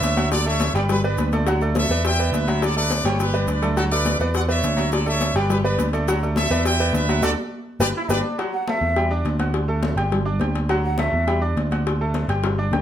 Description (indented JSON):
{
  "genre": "latin, salsa",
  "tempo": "208 BPM",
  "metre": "4/4",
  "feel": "straight",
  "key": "D major",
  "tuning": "A4 = 444 Hz",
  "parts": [
    { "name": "brilliant trumpet section", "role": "melody", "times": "0.0-8.2 s", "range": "F#4 to G5", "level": "-24 LUFS", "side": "equal", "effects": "none" },
    { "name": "bright grand piano", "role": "accompaniment", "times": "0.0-12.8 s", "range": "F#3 to G6", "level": "-25 LUFS", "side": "right 1 dB", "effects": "none" },
    { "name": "picked electric bass", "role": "bass", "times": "0.0-12.8 s", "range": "G1 to E2", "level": "-22 LUFS", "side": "right 1 dB", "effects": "none" },
    { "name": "congas", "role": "percussion", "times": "0.0-12.8 s", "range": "none", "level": "-28 LUFS", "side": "left 2 dB", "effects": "none" },
    { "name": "cowbell and bongos", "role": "percussion", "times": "0.0-12.8 s", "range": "none", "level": "-29 LUFS", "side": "left 5 dB", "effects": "none" },
    { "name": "maracas", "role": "percussion", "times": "0.0-8.2 s", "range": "none", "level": "-40 LUFS", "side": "right 10 dB", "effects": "none" },
    { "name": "bright trombone section", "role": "second line", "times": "8.0-8.4 s", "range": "D4 to E4", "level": "-29 LUFS", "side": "equal", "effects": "none" },
    { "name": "mellow jazz flute", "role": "melody", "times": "8.5-11.4 s", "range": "E5 to F#5", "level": "-24 LUFS", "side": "right 1 dB", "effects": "none" }
  ],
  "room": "moderate large studio reverb, RT60 0.9 s",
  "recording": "none",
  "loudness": "-19 LUFS",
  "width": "side -10 dB against mid",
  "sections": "0.0-8.4 A section; 8.4-12.8 B section",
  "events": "drum fill 3.0-3.8, 7.8-8.4, 12.4-12.8; band accent 7.2-8.4; flute solo 8.4-12.8",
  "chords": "0.3 Dadd9; 0.9 G; 1.5 Dadd9; 2.0 Em7; 2.6 D; 3.2 G; 3.8 Dadd9; 4.3 E5; 4.9 Dadd9; 5.5 G; 6.1 Dadd9; 6.7 Em7; 7.2 D; 7.8 G; 8.4 Esus24; 9.0 Em7; 9.5 D; 10.1 G5; 10.7 Dadd9; 11.3 Em7; 11.9 D"
}